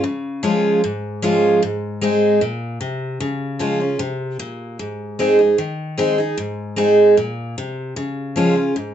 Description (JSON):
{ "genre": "country", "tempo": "151 BPM", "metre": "4/4", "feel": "straight", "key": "Db major", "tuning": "A4 = 440 Hz", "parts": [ { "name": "picked steel-string acoustic guitar", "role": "solo", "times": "0.0-8.9 s", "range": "Ab2 to Ab4", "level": "-17 LUFS", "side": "equal", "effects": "none" } ], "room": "moderate studio ambience, RT60 0.5 s", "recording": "nothing above 7.9 kHz", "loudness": "-16 LUFS", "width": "side -10 dB against mid", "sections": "0.0-8.9 A section", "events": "none", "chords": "0.0 Db; 1.6 Ab; 3.2 Db; 4.8 Ab; 8.0 Db" }